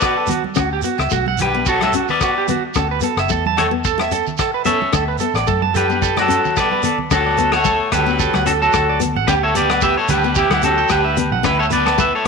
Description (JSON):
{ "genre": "highlife guitar band", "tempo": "110 BPM", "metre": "4/4", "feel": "swing 54% on 16ths", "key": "unclear", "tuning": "A4 = 440 Hz", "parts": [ { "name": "electric guitar at the edge of break-up", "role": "melody", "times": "0.0-12.3 s", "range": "E4 to E5", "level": "-19 LUFS", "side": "left 2 dB", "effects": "spring reverb" }, { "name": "breathy tenor saxophone", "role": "second line", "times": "0.0-12.3 s", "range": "E3 to C#4", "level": "-27 LUFS", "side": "left 13 dB", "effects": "none" }, { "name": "electric guitar at the edge of break-up", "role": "arpeggios", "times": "0.0-12.3 s", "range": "F#4 to A5", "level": "-20 LUFS", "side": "right 14 dB", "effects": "tape echo" }, { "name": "warm soul drum kit", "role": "drums", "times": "0.0-12.3 s", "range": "hi-hat, kick drum, rim click", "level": "-24 LUFS", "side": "left 5 dB", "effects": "none" }, { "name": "agogo bells", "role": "percussion", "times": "0.0-12.3 s", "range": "none", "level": "-28 LUFS", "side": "left 17 dB", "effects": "none" }, { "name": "shekere", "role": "percussion", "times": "0.0-12.1 s", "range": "none", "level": "-28 LUFS", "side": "right 8 dB", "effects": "none" }, { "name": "nylon-string guitar", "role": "accompaniment", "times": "0.3-12.2 s", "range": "A3 to D4", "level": "-25 LUFS", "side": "left 13 dB", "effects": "none" }, { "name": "congas", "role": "percussion", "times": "0.3-12.3 s", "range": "none", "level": "-29 LUFS", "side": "right 11 dB", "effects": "none" }, { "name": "vintage muted fingered electric bass", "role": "bass", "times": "0.6-12.1 s", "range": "F#1 to F#2", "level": "-24 LUFS", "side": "equal", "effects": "none" } ], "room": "light reverb, small room ambience", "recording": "1960s-style stereo with parts hard left and right", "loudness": "-14 LUFS", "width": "side -4 dB against mid", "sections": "0.0-7.1 A section; 7.1-12.3 B section", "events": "drum fill 6.6-7.1", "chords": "0.0 Bm7; 0.6 Emadd9 (rootless); 2.8 Asus2; 4.9 Bm7; 9.3 Emadd9/D; 11.4 Asus2/D" }